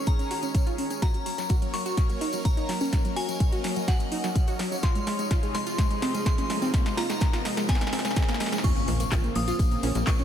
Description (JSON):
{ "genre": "progressive house", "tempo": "126 BPM", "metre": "4/4", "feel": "straight", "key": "unclear", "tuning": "A4 = 439 Hz", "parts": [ { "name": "supersaw pad", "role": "sustained chords", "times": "0.0-10.2 s", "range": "C3 to Eb5", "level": "-35 LUFS", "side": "right 1 dB", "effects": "phaser, sidechain pumping" }, { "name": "wide unison pluck", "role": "arpeggios", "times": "0.0-10.2 s", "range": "Gb3 to Ab4", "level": "-31 LUFS", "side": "right 1 dB", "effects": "sidechain pumping, digital delay" }, { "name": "backwards swelling texture", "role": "texture", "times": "0.0-8.7 s", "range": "Db5 to F6", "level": "-42 LUFS", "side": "right 1 dB", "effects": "built-in reverb, sidechain pumping" }, { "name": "glassy synth bell", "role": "melody", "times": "0.1-10.2 s", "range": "Gb5 to Eb6", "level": "-34 LUFS", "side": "left 3 dB", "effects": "chorus, dub echo" }, { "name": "deep house drum kit", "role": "drums", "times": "0.1-10.2 s", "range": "crash cymbal, handclaps, hi-hat, snare drum", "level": "-34 LUFS", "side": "equal", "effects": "overdrive, high-pass filter on hats, high-pass filter on snare, high-pass filter on cymbals, high-pass filter on room" }, { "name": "electronic kick drum", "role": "drums", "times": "0.1-10.2 s", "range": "none", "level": "-24 LUFS", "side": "equal", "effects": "none" }, { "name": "tambourine", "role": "percussion", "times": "0.1-10.2 s", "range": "none", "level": "-42 LUFS", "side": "left 2 dB", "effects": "none" }, { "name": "riser and impact", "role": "sound effects", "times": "3.2-10.2 s", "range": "none", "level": "-37 LUFS", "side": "equal", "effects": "none" }, { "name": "tight sequencer bass", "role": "bass", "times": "8.6-10.2 s", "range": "Bb1", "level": "-29 LUFS", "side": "equal", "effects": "sidechain pumping" }, { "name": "huge arena drum kit", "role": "drums", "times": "8.6-10.2 s", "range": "hi-hat, snare drum", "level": "-46 LUFS", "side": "left 4 dB", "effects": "none" } ], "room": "light reverb", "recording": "none", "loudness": "-24 LUFS", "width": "side -10 dB against mid", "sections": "0.0-8.6 A section; 8.6-10.2 B section", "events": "build-up 0.0-8.6; drum fill 1.0-8.6; drop 8.6-10.2; impact 8.6-10.2", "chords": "0.0 Dbsus2; 1.0 Gb; 4.8 Ab6; 8.6 Bbmadd9" }